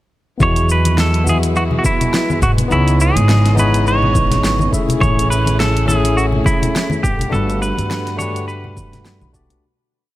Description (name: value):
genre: sunset chillout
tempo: 104 BPM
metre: 4/4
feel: swing 56% on 16ths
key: E major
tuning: A4 = 440 Hz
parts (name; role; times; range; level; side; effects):
- clean electric guitar; melody; 0.4-9.3 s; E4 to C#5; -20 LUFS; right 1 dB; vibrato effect, digital delay
- barky tine electric piano; accompaniment; 0.4-9.7 s; A3 to E5; -22 LUFS; moving between left 4 dB and right 4 dB; overdrive, auto-pan, low-pass filter
- warm studio string section; sustained chords; 0.4-9.6 s; C#3 to F#5; -26 LUFS; equal; none
- upright bass; bass; 0.4-9.6 s; G1 to G#2; -17 LUFS; equal; none
- deep house drum kit; drums; 0.4-9.6 s; hi-hat, shaker, snare drum; -23 LUFS; equal; none
- electronic kick drum; drums; 0.4-9.5 s; none; -19 LUFS; equal; none
- congas; percussion; 0.4-9.6 s; none; -23 LUFS; left 2 dB; none
room: light reverb, studio reverb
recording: none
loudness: -13 LUFS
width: side -16 dB against mid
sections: 0.4-9.6 groove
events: filter sweep on tine electric piano 0.4-9.6; fade-out 6.6-9.6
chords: 0.4 Emaj9; 2.7 C#m9; 4.7 Amaj7; 7.0 Gmaj9